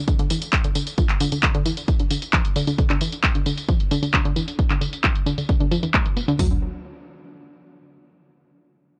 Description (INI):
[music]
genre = driving peak-time techno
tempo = 133 BPM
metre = 4/4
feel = straight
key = unclear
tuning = A4 = 439 Hz
[part]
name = analog pluck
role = riff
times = 0.1-6.6 s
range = D3 to B3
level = -28 LUFS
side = equal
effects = chorus, sidechain pumping, analog delay
[part]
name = techno drum kit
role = drums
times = 0.1-6.5 s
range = hi-hat, kick drum, toms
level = -23 LUFS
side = equal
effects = none
[part]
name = techno drum kit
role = drums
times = 0.1-6.4 s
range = handclaps, hi-hat, tambourine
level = -27 LUFS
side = equal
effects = low-pass filter on snare, sidechain pumping on hats, low-pass filter on hats, sidechain pumping on perc, low-pass filter on perc, low-pass filter on room
[part]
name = tight sequencer bass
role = bass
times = 6.4-6.6 s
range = F#2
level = -30 LUFS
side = equal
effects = none
[sound]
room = little or no reverb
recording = dry, gritty hardware recording, cassette tape, nothing above 10.5 kHz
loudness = -21 LUFS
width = mono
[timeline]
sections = 0.0-6.4 A section; 6.4-8.2 B section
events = none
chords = 0.0 Dm; 6.4 N.C.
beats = 0.08 0.53 | 0.98 1.43 1.88 2.33 | 2.78 3.23 3.69 4.14 | 4.59 5.04 5.49 5.94 | 6.39